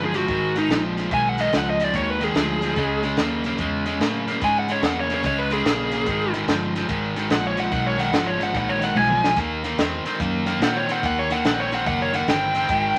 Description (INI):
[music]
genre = electric blues shuffle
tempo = 145 BPM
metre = 4/4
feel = swing 65% on 8ths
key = unclear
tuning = A4 = 440 Hz
[part]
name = smooth overdriven lead guitar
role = melody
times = 0.0-13.0 s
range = D#4 to G#5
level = -25 LUFS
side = equal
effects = none
[part]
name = overdriven semi-hollow guitar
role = riff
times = 0.0-13.0 s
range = G#2 to B#3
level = -26 LUFS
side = equal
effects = none
[part]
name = vintage muted fingered electric bass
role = bass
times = 0.0-13.0 s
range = F#1 to A#2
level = -32 LUFS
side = equal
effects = none
[part]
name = compact cocktail drum kit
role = drums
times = 0.1-13.0 s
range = hi-hat, kick drum, snare drum, toms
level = -28 LUFS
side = equal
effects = none
[sound]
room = moderate studio reverb, RT60 0.5 s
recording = vinyl crackle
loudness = -22 LUFS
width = mono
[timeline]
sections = 0.0-13.0 A section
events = lead electric guitar solo 0.0-13.0; drum fill 9.0-9.4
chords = 0.0 G#m; 2.8 C#m; 6.1 G#m; 9.4 D#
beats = 0.28 0.70 | 1.11 1.53 1.94 2.35 | 2.77 3.18 3.59 4.01 | 4.42 4.83 5.25 5.66 | 6.07 6.49 6.90 7.32 | 7.73 8.14 8.55 8.97 | 9.38 9.80 10.21 10.62 | 11.04 11.45 11.86 12.28 | 12.69